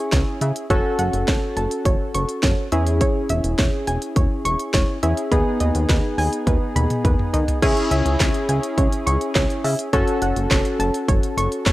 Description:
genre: synth-pop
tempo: 104 BPM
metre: 4/4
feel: straight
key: C# minor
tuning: A4 = 437 Hz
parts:
  - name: warm analog keys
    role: accompaniment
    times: 0.0-11.7 s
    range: B3 to A4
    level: -23 LUFS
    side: left 1 dB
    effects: chorus
  - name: soft round pluck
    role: arpeggios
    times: 0.0-11.7 s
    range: B4 to C#6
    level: -27 LUFS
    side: right 1 dB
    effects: chorus, tape echo
  - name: chorused synth bass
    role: bass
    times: 0.1-11.7 s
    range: E1 to D#3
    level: -22 LUFS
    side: equal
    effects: none
  - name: house drum kit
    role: drums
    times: 0.1-11.7 s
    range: crash cymbal, handclaps, hi-hat, kick drum, snare drum, toms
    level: -21 LUFS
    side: equal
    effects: none
room: light reverb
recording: dry, gritty hardware recording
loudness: -18 LUFS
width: side -17 dB against mid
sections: 0.0-7.6 A section; 7.6-11.7 B section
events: drum fill 6.5-7.6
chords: 0.0 C#m; 0.7 F#m; 2.7 C#m/E; 5.3 G#m/D#; 7.6 C#m; 9.9 F#m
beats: 0.12 | 0.70 1.28 1.86 2.43 | 3.01 3.59 4.16 4.74 | 5.32 5.89 6.47 7.05 | 7.62 8.20 8.78 9.36 | 9.93 10.51 11.09 11.66

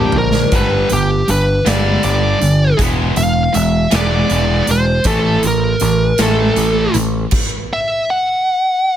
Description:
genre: quiet-loud alternative rock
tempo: 53 BPM (dotted quarters)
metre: 6/8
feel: straight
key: unclear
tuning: A4 = 440 Hz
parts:
  - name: high-gain lead guitar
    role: melody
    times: 0.0-9.0 s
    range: G4 to F#5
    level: -17 LUFS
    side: equal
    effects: distortion, plate reverb, digital delay
  - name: electric guitar through a small old amp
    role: arpeggios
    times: 0.0-0.5 s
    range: Bb2 to D4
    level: -24 LUFS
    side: equal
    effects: phaser, plate reverb, digital delay
  - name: distorted electric guitar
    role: riff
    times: 0.0-7.3 s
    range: G2 to B3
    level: -17 LUFS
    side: right 1 dB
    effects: overdrive
  - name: overdriven picked electric bass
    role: bass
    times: 0.0-7.2 s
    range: E1 to Bb1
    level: -18 LUFS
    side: equal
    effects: none
  - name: big rock drum kit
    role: drums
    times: 0.1-7.5 s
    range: crash cymbal, hi-hat, kick drum, snare drum, toms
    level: -20 LUFS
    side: equal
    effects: none
room: light reverb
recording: none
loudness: -12 LUFS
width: side -10 dB against mid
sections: 0.0-9.0 A section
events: drum fill 0.0-0.5; lead electric guitar solo 0.0-9.0; stop 7.3-9.0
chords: 0.0 Bb; 0.5 G5; 2.8 E; 5.1 A5; 7.3 N.C.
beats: | 0.52 1.66 | 2.79 3.93 | 5.06 6.20 | 7.33 8.46

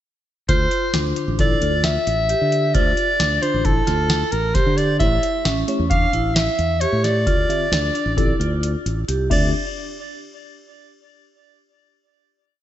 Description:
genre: progressive instrumental, band music in an uneven meter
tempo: 133 BPM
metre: 5/4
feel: straight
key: D minor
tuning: A4 = 440 Hz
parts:
  - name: breathy soprano saxophone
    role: melody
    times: 0.5-9.5 s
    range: A4 to F5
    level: -22 LUFS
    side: equal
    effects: slapback echo, ping-pong delay
  - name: vibraphone with medium mallets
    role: arpeggios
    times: 0.5-9.5 s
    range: C#4 to G4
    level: -26 LUFS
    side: right 2 dB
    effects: slapback echo, ping-pong delay
  - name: modern bright fingered electric bass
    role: bass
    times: 0.5-9.5 s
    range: A1 to D3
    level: -22 LUFS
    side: equal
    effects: none
  - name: booming analog drum machine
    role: drums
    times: 0.5-9.4 s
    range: crash cymbal, hi-hat, kick drum, snare drum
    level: -22 LUFS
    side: equal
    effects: none
  - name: mellow tine electric piano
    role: accompaniment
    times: 0.9-9.5 s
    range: D3 to E5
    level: -28 LUFS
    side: left 2 dB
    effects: medium stereo tremolo, slapback echo
room: moderate lush hall reverb, RT60 1.6 s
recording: big arena sound, nothing above 7.9 kHz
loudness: -17 LUFS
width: side -12 dB against mid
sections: 0.5-9.5 A section; 9.5-11.8 final hit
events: kick and snare drop out 8.6-9.5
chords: 0.5 Dm7; 5.0 A7; 7.3 Dm11; 9.5 N.C.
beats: | 0.49 0.95 1.40 1.85 2.30 | 2.75 3.20 3.65 4.10 4.55 | 5.01 5.46 5.91 6.36 6.81 | 7.27 7.72 8.17 8.63 9.08

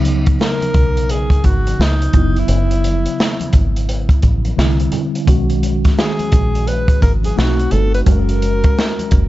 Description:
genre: hip hop, jazz-hop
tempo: 86 BPM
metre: 4/4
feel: swing 64% on 16ths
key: B major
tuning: A4 = 441 Hz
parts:
  - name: mellow tine electric piano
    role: accompaniment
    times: 0.0-9.3 s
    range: C#3 to A#4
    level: -21 LUFS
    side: right 1 dB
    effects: medium stereo tremolo
  - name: deep dub fingered electric bass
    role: bass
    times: 0.0-9.3 s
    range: F#1 to C#2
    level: -17 LUFS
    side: equal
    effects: none
  - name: crunchy breakbeat drum kit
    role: drums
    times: 0.0-9.3 s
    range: hi-hat, kick drum, snare drum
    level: -16 LUFS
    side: equal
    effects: none
  - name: congas and tube shaker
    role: percussion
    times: 0.0-9.3 s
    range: none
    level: -30 LUFS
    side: left 2 dB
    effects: none
  - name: breathy alto saxophone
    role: melody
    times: 0.4-9.3 s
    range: D#4 to B4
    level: -22 LUFS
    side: left 1 dB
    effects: tape echo
room: little or no reverb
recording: dark, warm production, nothing above 7.7 kHz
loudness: -13 LUFS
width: side -16 dB against mid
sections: 0.0-9.3 A section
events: none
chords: 0.0 C#9sus4; 2.1 F#7(no3); 4.6 Cadd9; 5.3 B69; 7.4 B7b9; 8.1 F#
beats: 0.39 1.09 1.79 | 2.48 3.18 3.88 4.58 | 5.27 5.97 6.67 7.37 | 8.06 8.76

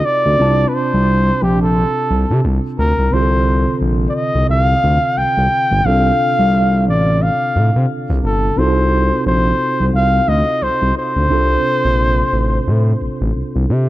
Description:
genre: R&B, neo-soul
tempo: 88 BPM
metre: 4/4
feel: swing 58% on 16ths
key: unclear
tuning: A4 = 440 Hz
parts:
  - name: breathy flugelhorn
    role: melody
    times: 0.0-13.3 s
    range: G4 to G5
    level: -17 LUFS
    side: equal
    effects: none
  - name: mellow tine electric piano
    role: accompaniment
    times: 0.0-13.9 s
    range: C3 to A5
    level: -21 LUFS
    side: right 2 dB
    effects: medium stereo tremolo
  - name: smooth gliding synth bass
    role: bass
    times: 0.3-13.9 s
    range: G1 to C3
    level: -15 LUFS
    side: equal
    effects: none
room: light reverb, small room ambience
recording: dark, warm production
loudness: -13 LUFS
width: side -16 dB against mid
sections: 0.0-13.9 A section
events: none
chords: 0.4 Bbmaj9; 3.1 G9sus4 (rootless); 8.6 F7b9; 11.3 Bbmaj9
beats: | 0.38 1.06 1.74 2.42 | 3.10 3.79 4.47 5.15 | 5.83 6.51 7.20 7.88 | 8.56 9.24 9.92 10.60 | 11.29 11.97 12.65 13.33

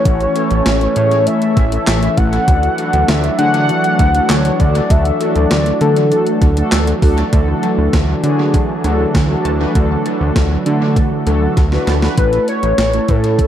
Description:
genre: synth-pop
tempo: 99 BPM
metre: 4/4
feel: straight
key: unclear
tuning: A4 = 441 Hz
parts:
  - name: warm velvety synth lead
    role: melody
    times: 0.0-7.0, 12.2-13.5 s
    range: A4 to F#5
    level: -18 LUFS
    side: left 1 dB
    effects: chorus, dub echo
  - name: warm analog pad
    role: sustained chords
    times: 0.0-12.1 s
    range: E3 to D4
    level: -22 LUFS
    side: right 2 dB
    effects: chorus
  - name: mellow synth brass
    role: accompaniment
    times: 0.1-13.5 s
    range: A3 to B4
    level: -19 LUFS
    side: left 2 dB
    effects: chorus, dub echo
  - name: fat analog bass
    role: bass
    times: 0.1-13.4 s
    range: A1 to D3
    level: -16 LUFS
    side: equal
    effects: none
  - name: gated 80s digital drum machine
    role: drums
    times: 0.1-13.5 s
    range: handclaps, hi-hat, kick drum, snare drum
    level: -18 LUFS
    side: equal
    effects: gated reverb, gated reverb snare, overdrive, dub echo
  - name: wide unison pluck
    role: arpeggios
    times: 7.3-12.2 s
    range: D3 to A5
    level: -24 LUFS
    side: right 4 dB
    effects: dub echo
room: moderate spring reverb, RT60 2.5 s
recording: echo-heavy mix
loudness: -12 LUFS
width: side -10 dB against mid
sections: 0.0-7.3 A section; 7.3-12.2 B section; 12.2-13.5 C section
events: drum fill 11.6-12.2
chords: 0.0 A; 2.5 Dadd9; 12.2 A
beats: | 0.06 0.66 1.27 1.87 | 2.48 3.08 3.69 4.30 | 4.90 5.51 6.12 6.72 | 7.33 7.93 8.54 9.15 | 9.75 10.36 10.96 11.57 | 12.18 12.78 13.39

